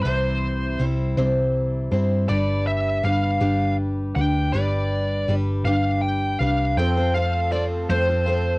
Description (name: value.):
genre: rock.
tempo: 54 BPM (dotted quarters).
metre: 6/8.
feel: straight.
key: unclear.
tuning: A4 = 438 Hz.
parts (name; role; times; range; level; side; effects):
bluesy overdriven lead guitar; melody; 0.0-8.6 s; C5 to G5; -25 LUFS; equal; distortion.
picked steel-string acoustic guitar; accompaniment; 0.0-8.6 s; C3 to C5; -25 LUFS; left 1 dB; cassette tape.
hollow-body short-scale picked electric bass; bass; 0.0-8.6 s; G1 to G2; -22 LUFS; equal; none.
warm upright piano; accompaniment; 6.8-8.5 s; F4 to C5; -31 LUFS; right 4 dB; cassette tape.
musette accordion; sustained chords; 6.8-8.6 s; F3 to A4; -34 LUFS; right 2 dB; cassette tape.
room: light reverb.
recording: home recording on cassette.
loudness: -19 LUFS.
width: side -24 dB against mid.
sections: 0.0-6.8 A section; 6.8-8.6 B section.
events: none.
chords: 0.0 C; 2.3 G; 6.8 F.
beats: | 0.04 1.17 | 2.29 3.41 | 4.53 5.66 | 6.78 7.90.